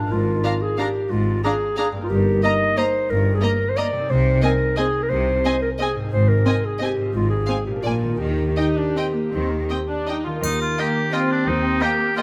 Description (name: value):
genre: classical, orchestral ballroom waltz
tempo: 153-193 BPM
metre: 3/4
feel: rubato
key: Eb major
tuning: A4 = 440 Hz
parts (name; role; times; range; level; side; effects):
- warm clarinet; second line; 0.0-10.3 s; D4 to Eb5; -25 LUFS; equal; none
- concert harp; arpeggios; 0.0-12.2 s; G2 to Bb4; -31 LUFS; equal; none
- rich chamber double bass section; bass; 0.1-11.7 s; G1 to Eb2; -28 LUFS; equal; none
- rich studio cello section; bass; 0.1-11.7 s; G2 to Eb3; -28 LUFS; equal; none
- rich chamber violin section; melody; 0.4-12.2 s; G5 to Bb5; -34 LUFS; equal; none
- rich chamber violin section; second line; 0.4-12.2 s; Bb3 to F5; -34 LUFS; equal; none
- rich chamber viola section; accompaniment; 0.4-12.2 s; Bb3 to F4; -29 LUFS; equal; none
- clear oboe; second line; 10.4-12.2 s; D4 to G4; -24 LUFS; equal; none
- dark French horn section; sustained chords; 10.4-12.2 s; Bb3 to G4; -32 LUFS; equal; none
- triangle; percussion; 10.4-11.1 s; none; -36 LUFS; equal; none
room: moderate concert hall reverb, RT60 2.0 s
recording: close, detailed microphones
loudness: -21 LUFS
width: mono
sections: 0.0-10.4 A section; 10.4-12.2 A section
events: none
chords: 0.1 Bb7/Ab; 2.1 Eb/G; 4.1 Ab/C; 6.1 Ab; 7.1 Fm/Ab; 7.8 Bb7; 8.2 Eb